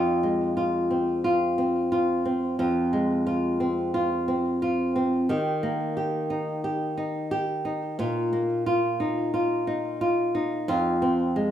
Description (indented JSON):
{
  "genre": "folktronica",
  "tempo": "89 BPM",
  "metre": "4/4",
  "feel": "swing 56% on 16ths",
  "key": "F minor",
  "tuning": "A4 = 437 Hz",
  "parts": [
    { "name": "flamenco guitar", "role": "solo", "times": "0.0-11.5 s", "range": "F2 to G4", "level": "-23 LUFS", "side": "equal", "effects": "none" }
  ],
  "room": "wet studio reverb, RT60 0.6 s",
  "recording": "rough home demo mix",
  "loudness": "-23 LUFS",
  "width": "side -10 dB against mid",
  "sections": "0.0-10.7 A section",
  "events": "none",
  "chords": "0.0 Fm; 5.3 Eb; 8.0 Bbsus4; 10.7 Fm"
}